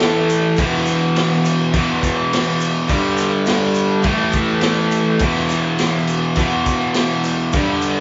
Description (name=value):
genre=garage rock duo or trio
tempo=103 BPM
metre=4/4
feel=straight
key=E minor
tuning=A4 = 440 Hz
part: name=raw garage guitar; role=riff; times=0.0-8.0 s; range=E2 to A3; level=-19 LUFS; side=equal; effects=overdrive
part: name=raw garage drum kit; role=drums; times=0.0-8.0 s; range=crash cymbal, kick drum, snare drum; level=-24 LUFS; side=equal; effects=none
part: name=tube shaker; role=percussion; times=0.0-8.0 s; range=none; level=-40 LUFS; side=equal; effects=none
room=wet large studio reverb, RT60 1.1 s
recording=band playing live in one room, nothing above 7.6 kHz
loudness=-17 LUFS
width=mono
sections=0.0-8.0 A section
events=none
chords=0.0 A5; 0.6 E5; 2.9 G5; 4.1 A5; 5.2 E5